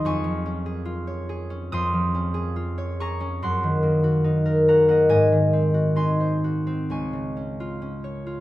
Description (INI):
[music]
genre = classical, solo harp piece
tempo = 64-73 BPM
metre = 4/4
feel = rubato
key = Db major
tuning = A4 = 440 Hz
[part]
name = concert harp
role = solo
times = 0.0-8.4 s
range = Db2 to Eb6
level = -20 LUFS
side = equal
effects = none
[sound]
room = moderate recital hall reverb, RT60 1.3 s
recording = close, detailed microphones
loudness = -20 LUFS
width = side -16 dB against mid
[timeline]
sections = 0.0-8.4 A section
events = none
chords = 0.1 Db/F; 3.4 Ebm/Gb; 5.1 Ab7; 6.9 Db